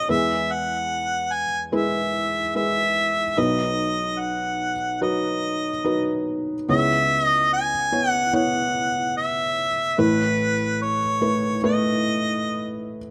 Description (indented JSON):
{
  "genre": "acoustic folk-pop ballad",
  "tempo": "73 BPM",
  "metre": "4/4",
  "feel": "straight",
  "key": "unclear",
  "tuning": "A4 = 439 Hz",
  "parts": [
    { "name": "mellow harmonica", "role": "melody", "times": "0.0-12.8 s", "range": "B4 to G#5", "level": "-25 LUFS", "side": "equal", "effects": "slapback echo" },
    { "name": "felt-muted upright piano", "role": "accompaniment", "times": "0.0-13.1 s", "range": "A1 to C#5", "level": "-26 LUFS", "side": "equal", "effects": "none" }
  ],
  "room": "light reverb",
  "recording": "recorded outdoors, with no room sound",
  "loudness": "-23 LUFS",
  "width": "mono",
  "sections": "0.0-6.7 A section; 6.7-13.1 B section",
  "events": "none",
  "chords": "0.1 E; 3.4 B; 6.7 C#m7; 10.0 Asus2"
}